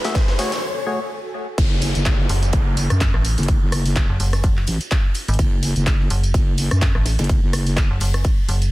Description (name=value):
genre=bass house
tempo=126 BPM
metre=4/4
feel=swing 56% on 16ths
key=F# minor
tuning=A4 = 439 Hz
part: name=percussive organ stab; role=stabs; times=0.0-1.0 s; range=A3 to E5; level=-26 LUFS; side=left 2 dB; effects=chorus, sidechain pumping, tape echo
part: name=wobble bass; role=bass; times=0.0-7.9 s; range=F#1 to F#2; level=-21 LUFS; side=equal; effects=chorus, overdrive, sidechain pumping, high-pass filter
part: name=big-room dance drum kit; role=drums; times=0.0-8.7 s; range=crash cymbal, handclaps, hi-hat, rim click, snare drum, tambourine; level=-26 LUFS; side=equal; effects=high-pass filter on snare, high-pass filter on hats, high-pass filter on perc, high-pass filter on cymbals
part: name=riser and downlifter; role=sound effects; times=0.0-5.4 s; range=none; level=-29 LUFS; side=equal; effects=none
part: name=ethereal airy pad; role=texture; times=0.0-0.6 s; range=F#4 to G#5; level=-35 LUFS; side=left 1 dB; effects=ensemble chorus, built-in reverb, sidechain pumping
part: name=crisp fusion drum kit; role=drums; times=0.1-8.7 s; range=hi-hat, ride cymbal, snare drum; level=-34 LUFS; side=right 1 dB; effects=sidechain pumping on cymbals, high-pass filter on cymbals, sidechain pumping on hats, high-pass filter on hats, high-pass filter on snare, high-pass filter on room
part: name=electronic kick drum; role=drums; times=0.2-8.4 s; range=none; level=-18 LUFS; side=equal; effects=none
part: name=metallic FM bass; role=bass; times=2.3-8.7 s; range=F#1 to A1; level=-19 LUFS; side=equal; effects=tube saturation, sidechain pumping
room=digital ambience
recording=dense, heavily limited modern master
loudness=-17 LUFS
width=side -18 dB against mid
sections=0.0-1.6 A section; 1.6-8.7 B section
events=build-up 0.0-1.6; drum fill 0.0-0.6; riser 0.0-0.6; break 0.6-1.6; drop 1.6-8.7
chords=0.0 F#madd9; 1.6 N.C.